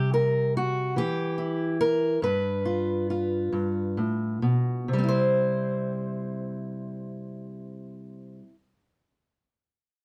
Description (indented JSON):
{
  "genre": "acoustic country blues, solo or duo",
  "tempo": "43-49 BPM (dotted quarters)",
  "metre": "12/8",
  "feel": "straight",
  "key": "C major",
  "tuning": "A4 = 440 Hz",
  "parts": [
    { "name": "fingerpicked steel-string acoustic guitar", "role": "solo", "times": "0.0-8.5 s", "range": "G2 to C5", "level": "-27 LUFS", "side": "equal", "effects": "none" }
  ],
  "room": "light reverb",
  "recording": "dark, warm production",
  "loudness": "-27 LUFS",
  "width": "mono",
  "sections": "0.0-4.9 A section; 4.9-10.0 B section",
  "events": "slowing down 0.0-4.9",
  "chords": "0.0 C7; 2.2 G7; 4.9 C",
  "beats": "0.96 2.23 3.54 | 4.90 6.29 7.67"
}